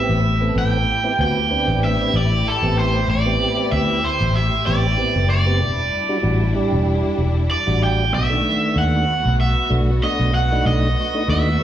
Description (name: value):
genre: blues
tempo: 95 BPM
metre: 4/4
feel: swing 55% on 16ths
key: unclear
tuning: A4 = 440 Hz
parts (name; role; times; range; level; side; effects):
- raw garage guitar; melody; 0.0-11.6 s; A4 to G5; -21 LUFS; right 2 dB; overdrive
- tonewheel organ; accompaniment; 0.0-11.6 s; D#3 to A4; -24 LUFS; right 2 dB; slow rotary speaker, slapback echo
- rich symphonic string section; sustained chords; 0.0-11.6 s; G3 to G4; -27 LUFS; left 2 dB; none
- vintage muted fingered electric bass; bass; 0.1-11.6 s; E1 to D#2; -19 LUFS; equal; none
room: light reverb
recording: live gig heard through the venue's PA, club reverb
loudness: -16 LUFS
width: side -11 dB against mid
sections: 0.0-11.6 A section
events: none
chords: 0.0 Am7; 5.6 Em7; 8.1 B7#9